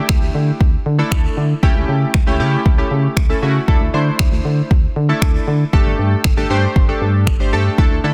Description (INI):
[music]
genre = dance-pop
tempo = 117 BPM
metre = 4/4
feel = straight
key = unclear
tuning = A4 = 442 Hz
[part]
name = chorused retro synth keys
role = accompaniment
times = 0.0-8.1 s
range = A3 to C5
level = -23 LUFS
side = equal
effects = tremolo, sidechain pumping
[part]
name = solid FM bass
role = bass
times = 0.1-8.1 s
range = G1 to D3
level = -20 LUFS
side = equal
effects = sidechain pumping
[part]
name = deep house drum kit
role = drums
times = 0.1-7.9 s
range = finger snaps, kick drum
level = -17 LUFS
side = equal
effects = soft clipping on snare
[sound]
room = little or no reverb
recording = dense, heavily limited modern master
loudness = -16 LUFS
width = mono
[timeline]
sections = 0.0-8.1 A section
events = none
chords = 0.0 Dsus2; 1.6 A7/C#; 3.7 Dsus2; 5.7 Gsus2